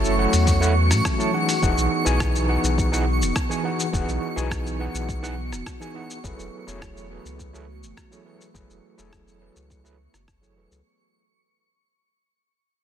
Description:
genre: sunset chillout.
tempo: 104 BPM.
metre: 4/4.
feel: straight.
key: unclear.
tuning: A4 = 441 Hz.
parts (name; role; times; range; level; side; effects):
overdriven tine electric piano; accompaniment; 0.0-10.8 s; E3 to A5; -27 LUFS; right 1 dB; medium tremolo, auto-pan, low-pass filter, ping-pong delay.
airy breathy pad; sustained chords; 0.0-10.8 s; E3 to F#4; -30 LUFS; left 3 dB; chorus.
warm sub bass; bass; 0.0-10.8 s; E1 to A2; -24 LUFS; equal; none.
dusty soul sampler-style drum kit; drums; 0.0-10.8 s; hi-hat, rim click, shaker; -30 LUFS; left 1 dB; small room ambience, soft clipping on snare.
twinkling granular texture; texture; 0.0-10.9 s; C#6 to C#7; -30 LUFS; right 2 dB; built-in reverb.
electronic kick drum; drums; 0.5-10.4 s; none; -26 LUFS; equal; small room ambience.
room: light reverb.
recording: dense, heavily limited modern master.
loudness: -20 LUFS.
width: side -9 dB against mid.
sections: 0.0-10.9 A section.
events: fade-out 0.0-10.9; filter sweep on tine electric piano 0.0-10.9; filter sweep on analog synth pad 0.0-10.9.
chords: 0.0 A6; 1.3 Emaj9; 6.2 F#m11.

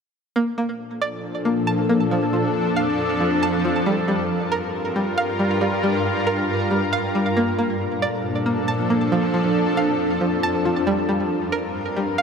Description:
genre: hip hop.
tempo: 137 BPM.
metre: 4/4.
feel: half-time.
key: G minor.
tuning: A4 = 441 Hz.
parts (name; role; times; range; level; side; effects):
shimmering ambient pad; sustained chords; 1.1-12.2 s; F2 to Bb4; -21 LUFS; equal; chorus, built-in reverb.
string-like resonator pluck; arpeggios; 0.4-12.2 s; F3 to A5; -24 LUFS; right 1 dB; chorus, digital delay.
room: moderate lush hall reverb, RT60 2.8 s.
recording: none.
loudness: -19 LUFS.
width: side -6 dB against mid.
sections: 0.4-12.2 A section.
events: none.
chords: 0.4 Bbmaj7; 2.1 F6; 3.9 Gm7; 7.4 Bbmaj7; 9.1 F6; 10.9 Gm7.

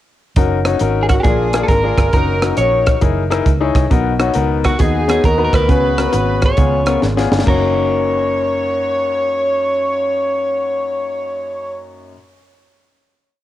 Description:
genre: uptempo gospel.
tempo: 135 BPM.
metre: 4/4.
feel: swing 66% on 8ths.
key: F# major.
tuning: A4 = 440 Hz.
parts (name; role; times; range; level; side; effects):
clear baby grand piano; accompaniment; 0.4-12.1 s; F#2 to C#5; -19 LUFS; left 7 dB; cassette tape.
fingered electric bass; bass; 0.4-12.1 s; F#1 to D#2; -20 LUFS; right 1 dB; none.
crisp fusion drum kit; drums; 0.4-7.6 s; crash cymbal, hi-hat, kick drum, rim click, snare drum; -17 LUFS; right 1 dB; cassette tape.
clean electric guitar; melody; 1.0-12.1 s; F#4 to C#5; -21 LUFS; right 3 dB; warbly pitch drift, cassette tape.
clear saxophone section; melody; 1.1-11.8 s; C#4 to C#5; -19 LUFS; equal; cassette tape.
room: light reverb, small room ambience.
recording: home recording on cassette.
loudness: -13 LUFS.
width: side -13 dB against mid.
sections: 0.4-7.5 breakdown; 7.5-11.0 final chord.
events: drum fill 7.0-7.5.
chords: 0.4 F#6; 1.3 A#7; 2.1 D#m7/F#; 3.0 F#13; 3.9 Bmaj7; 5.7 C#7sus4; 6.6 C#7; 7.5 F#6.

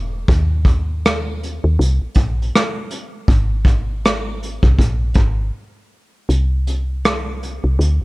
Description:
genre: lo-fi hip hop.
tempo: 80 BPM.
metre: 4/4.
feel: swing 60% on 16ths.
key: unclear.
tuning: A4 = 439 Hz.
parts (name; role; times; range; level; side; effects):
woody FM bass; bass; 0.0-8.0 s; E1 to Eb2; -18 LUFS; equal; none.
vintage brush drum kit; drums; 0.3-8.0 s; hi-hat, kick drum, rim click; -17 LUFS; equal; vintage 12-bit sampler grit.
room: little or no reverb.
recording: cassette tape.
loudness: -15 LUFS.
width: side -21 dB against mid.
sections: 0.0-6.3 A section; 6.3-8.0 B section.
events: break 5.5-6.3; kick muted 6.3-8.0.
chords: none.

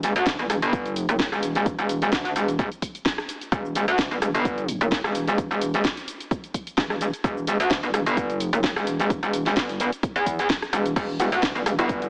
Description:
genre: bass house.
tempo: 129 BPM.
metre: 4/4.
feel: swing 54% on 16ths.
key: E minor.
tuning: A4 = 438 Hz.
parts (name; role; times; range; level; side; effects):
metallic wobble bass; bass; 0.0-12.1 s; E1 to E2; -25 LUFS; equal; chorus, sidechain pumping.
house drum kit; drums; 0.0-12.1 s; crash cymbal, hi-hat, rim click, shaker, snare drum; -30 LUFS; equal; overdrive, studio reverb.
electronic kick drum; drums; 0.3-12.0 s; none; -30 LUFS; equal; overdrive, studio reverb.
orchestra-hit-like synth stab; stabs; 11.2-11.9 s; G3 to F#4; -30 LUFS; equal; built-in reverb, sidechain pumping, tape echo.
room: light reverb, digital ambience.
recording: heavily compressed radio sound, multiband compression, AM radio sound.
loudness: -24 LUFS.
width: mono.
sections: 0.0-12.1 A section.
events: none.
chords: 0.0 Em.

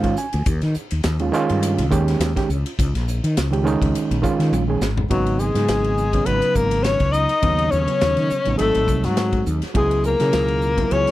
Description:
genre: electric jazz fusion.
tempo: 103 BPM.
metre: 4/4.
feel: swing 54% on 16ths.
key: G# dorian.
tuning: A4 = 440 Hz.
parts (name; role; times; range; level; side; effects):
overdriven reed electric piano; accompaniment; 0.0-11.1 s; B2 to G#5; -23 LUFS; right 4 dB; none.
mellow fretless electric bass; bass; 0.0-11.1 s; G#1 to D#3; -22 LUFS; equal; none.
modern studio drum kit; drums; 0.0-11.1 s; hi-hat, kick drum, ride cymbal, snare drum, toms; -26 LUFS; equal; none.
breathy alto saxophone; melody; 5.1-11.1 s; F#4 to D#5; -21 LUFS; left 2 dB; none.
bright tenor saxophone; second line; 5.1-11.1 s; F#3 to D#4; -26 LUFS; left 5 dB; none.
room: little or no reverb.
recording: none.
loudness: -17 LUFS.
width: side -15 dB against mid.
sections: 0.0-5.1 A section; 5.1-11.1 B section.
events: reed electric piano fill 0.0-0.5; drum fill 4.5-5.1.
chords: 0.5 D#9sus4; 5.1 G#m7; 7.4 D#m7; 8.6 G#7b9; 9.7 C#m7.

